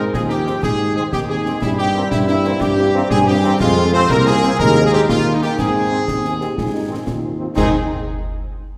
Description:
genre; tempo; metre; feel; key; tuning
military-style march for wind band; 121 BPM (dotted quarters); 6/8; straight; Ab major; A4 = 439 Hz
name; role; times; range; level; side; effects
bright trumpet section; melody; 0.0-7.7 s; Eb4 to C5; -26 LUFS; equal; none
clear woodwind section; second line; 0.0-7.7 s; Eb4 to C5; -26 LUFS; equal; none
mellow hollow large flute ensemble; second line; 0.0-7.7 s; Eb5 to C6; -27 LUFS; equal; none
warm euphonium; second line; 0.0-7.5 s; Eb3 to G4; -25 LUFS; equal; none
mellow French horn section; accompaniment; 0.0-7.7 s; Eb3 to Eb4; -30 LUFS; equal; none
warm trombone section; sustained chords; 0.0-7.7 s; Eb3 to C4; -31 LUFS; equal; none
mellow tuba; bass; 0.0-7.7 s; C2 to Ab2; -22 LUFS; equal; none
concert snare drum, concert bass drum and clash cymbals; drums; 0.1-7.7 s; none; -27 LUFS; equal; none
room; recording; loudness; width
wet scoring stage reverb, RT60 2.0 s; heard from further back in the room; -17 LUFS; mono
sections
0.0-7.6 A section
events
none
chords
0.0 Ab; 1.6 C7/G; 3.6 Fm; 4.6 Ab/Eb; 5.1 Eb5; 5.6 Ab

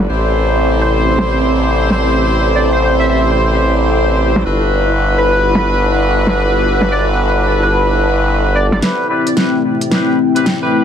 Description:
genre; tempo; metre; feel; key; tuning
glitch hop; 110 BPM; 4/4; swing 63% on 16ths; A dorian; A4 = 438 Hz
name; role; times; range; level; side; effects
dark analog pad; sustained chords; 0.0-10.8 s; A3 to E6; -19 LUFS; equal; chorus
formant-sweep wobble bass; bass; 0.0-8.8 s; G1 to A1; -16 LUFS; equal; chorus
ethereal airy pad; texture; 0.0-10.8 s; E4 to G5; -20 LUFS; equal; ensemble chorus, built-in reverb
clear horn section; stabs; 0.1-10.8 s; C4 to C5; -17 LUFS; left 1 dB; low-pass filter, digital delay
sync lead; melody; 0.8-8.8 s; B4 to E5; -20 LUFS; equal; chorus, digital delay
pop drum kit; drums; 1.2-10.6 s; hi-hat, snare drum; -16 LUFS; equal; low-pass filter on snare, small room ambience, low-pass filter on hats
room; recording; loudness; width
light reverb; dense, heavily limited modern master, vinyl crackle; -11 LUFS; side -8 dB against mid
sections
0.0-8.8 A section; 8.8-10.8 B section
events
filter sweep on analog synth pad 0.0-8.8; build-up 8.8-10.8; drum fill 8.8-10.8; filter sweep on horn section 8.8-10.8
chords
0.1 Am7; 4.5 Gmaj7; 8.8 Am7

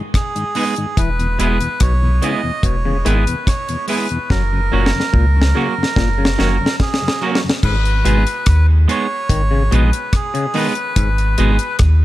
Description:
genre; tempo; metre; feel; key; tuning
roots reggae; 72 BPM; 4/4; straight; G# minor; A4 = 439 Hz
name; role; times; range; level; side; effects
tonewheel organ; accompaniment; 0.0-7.5 s; E2 to G#4; -26 LUFS; left 2 dB; chorus vibrato
deep reggae drum kit; drums; 0.1-12.0 s; crash cymbal, hi-hat, kick drum, rim click, snare drum; -18 LUFS; equal; none
melodica; melody; 0.2-11.8 s; G#4 to D#5; -22 LUFS; right 1 dB; dub echo
clean electric guitar; accompaniment; 0.6-11.6 s; F#3 to G#4; -23 LUFS; right 5 dB; dub echo
clav; arpeggios; 1.0-11.5 s; G#2 to F#3; -25 LUFS; left 5 dB; none
soft dub sub bass; bass; 1.0-12.0 s; E1 to D#2; -15 LUFS; equal; none
room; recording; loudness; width
studio ambience; none; -14 LUFS; side -15 dB against mid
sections
0.0-7.6 A section; 7.6-12.0 B section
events
drum fill 4.3-7.6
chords
0.0 G#m; 1.0 E; 4.3 F#; 7.6 G#m

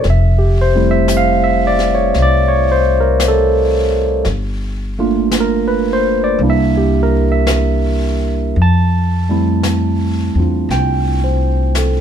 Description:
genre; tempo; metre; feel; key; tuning
jazz ballad; 56 BPM; 4/4; swing 69% on 8ths; F major; A4 = 440 Hz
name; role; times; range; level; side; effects
barky tine electric piano; accompaniment; 0.0-12.0 s; G3 to A5; -14 LUFS; right 1 dB; overdrive
upright bass; bass; 0.0-12.0 s; F1 to F2; -16 LUFS; equal; none
jazz brush drum kit; drums; 0.0-12.0 s; brushed snare drum, hi-hat, snare drum; -26 LUFS; left 4 dB; none
room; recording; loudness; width
moderate studio reverb, RT60 0.7 s; minimal, uncompressed stereo recording; -12 LUFS; side -8 dB against mid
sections
0.0-8.6 A section; 8.6-12.0 B section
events
none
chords
0.1 Fmaj7; 4.3 Gm7; 6.4 C7; 8.6 Fmaj7

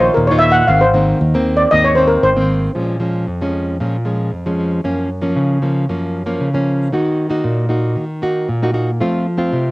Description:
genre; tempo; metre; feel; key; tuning
samba and choro; 115 BPM; 4/4; straight; Bb minor; A4 = 439 Hz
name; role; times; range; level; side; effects
steel pan; melody; 0.0-2.4 s; Bb4 to Gb5; -13 LUFS; equal; cassette tape
nylon-string guitar; accompaniment; 0.0-9.7 s; F2 to Gb4; -16 LUFS; equal; cassette tape
fingered electric bass; bass; 0.0-2.7 s; Ab1 to Eb2; -18 LUFS; equal; none
room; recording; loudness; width
moderate studio reverb, RT60 0.5 s; home recording on cassette; -14 LUFS; side -20 dB against mid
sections
0.0-2.8 A section; 2.8-9.7 B section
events
steel pan solo 0.0-2.8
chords
0.0 Ebsus2; 0.7 Abadd9; 2.8 Bbm7; 4.8 Gbmaj7; 6.9 Ebm; 9.0 F

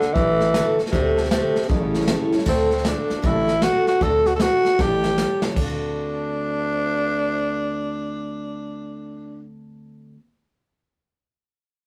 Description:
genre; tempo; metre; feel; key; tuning
rockabilly; 155 BPM; 4/4; swing 64% on 8ths; D mixolydian; A4 = 440 Hz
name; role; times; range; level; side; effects
raspy tenor saxophone; melody; 0.0-9.4 s; C3 to A4; -24 LUFS; equal; none
picked steel-string acoustic guitar; accompaniment; 0.0-10.2 s; A2 to B4; -28 LUFS; equal; none
upright bass; bass; 0.0-10.1 s; A1 to D2; -29 LUFS; equal; none
vintage brush drum kit; drums; 0.0-5.7 s; crash cymbal, hi-hat, kick drum, snare drum; -27 LUFS; equal; none
room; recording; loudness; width
moderate small room reverb, RT60 0.5 s; rough rehearsal-room recording; -21 LUFS; mono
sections
0.0-2.5 A section; 2.5-5.6 B section; 5.6-8.7 C section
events
drum fill 4.8-5.6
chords
0.0 D7; 1.7 A7; 2.5 D7; 4.8 A7; 5.6 D6

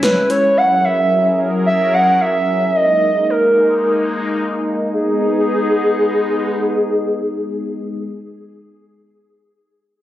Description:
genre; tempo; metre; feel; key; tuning
pop; free time; none; none; G# minor; A4 = 440 Hz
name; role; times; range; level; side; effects
hollow clarinet-like synth lead; melody; 0.0-8.0 s; G#4 to F#5; -15 LUFS; right 1 dB; chorus, tape echo
sweeping resonant pad; sustained chords; 0.0-8.0 s; F#3 to A#4; -20 LUFS; left 1 dB; chorus
FM electric piano with tremolo; accompaniment; 0.3-0.5 s; G#3 to G#4; -25 LUFS; left 2 dB; none
room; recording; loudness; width
light reverb, digital ambience; recorded on a phone in the room, studio reverb, compression; -14 LUFS; side -13 dB against mid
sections
0.0-4.9 A section; 4.9-9.3 B section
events
none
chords
0.0 C#m; 0.6 F#7; 2.8 G#sus2; 4.9 G#m

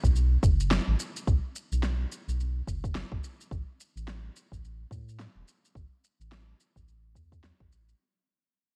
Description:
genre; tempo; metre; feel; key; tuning
organic downtempo; 107 BPM; 4/4; swing 59% on 16ths; unclear; A4 = 442 Hz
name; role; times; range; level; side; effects
round analog bass; bass; 0.0-7.9 s; E1 to A2; -31 LUFS; equal; none
electronic kick drum; drums; 0.0-7.7 s; none; -30 LUFS; equal; none
electronic shaker and snare drum; drums; 0.0-8.0 s; none; -36 LUFS; equal; none
room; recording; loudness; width
light reverb, digital ambience; worn, warbling old tape, cassette tape, warbly pitch drift; -29 LUFS; mono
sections
0.0-8.0 A section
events
fade-out 0.0-8.0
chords
none

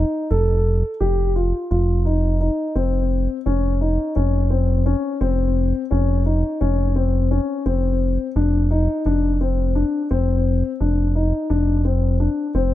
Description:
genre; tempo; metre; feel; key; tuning
progressive instrumental, band music in an uneven meter; 172 BPM (eighths); 7/8; straight; unclear; A4 = 440 Hz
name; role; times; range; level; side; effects
dark concert grand piano; arpeggios; 0.0-12.7 s; C4 to A4; -22 LUFS; left 4 dB; ping-pong delay, plate reverb
round analog bass; bass; 0.0-12.7 s; F1; -19 LUFS; right 1 dB; none
room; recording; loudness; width
light reverb; none; -18 LUFS; side -14 dB against mid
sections
0.0-2.8 A section; 2.8-12.7 B section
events
none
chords
0.0 F7; 2.8 Dbmaj9/F; 7.7 F5

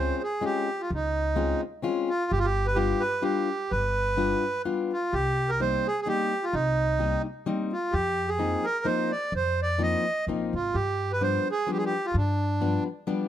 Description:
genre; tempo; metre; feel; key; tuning
musette; 128 BPM; 3/4; swing 55% on 8ths; unclear; A4 = 440 Hz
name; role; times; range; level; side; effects
accordion; melody; 0.0-12.8 s; D4 to Eb5; -27 LUFS; right 2 dB; plate reverb
fingerpicked plugged-in steel-string acoustic guitar; accompaniment; 0.0-13.3 s; F3 to F4; -29 LUFS; left 5 dB; none
upright bass; bass; 0.0-12.7 s; G1 to G2; -29 LUFS; equal; none
room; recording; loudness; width
moderate studio reverb, RT60 0.6 s; none; -24 LUFS; side -11 dB against mid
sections
0.0-13.3 A section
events
none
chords
0.0 Dbmaj7; 2.3 G7; 5.1 Cm7; 7.9 F7sus4; 10.7 G7

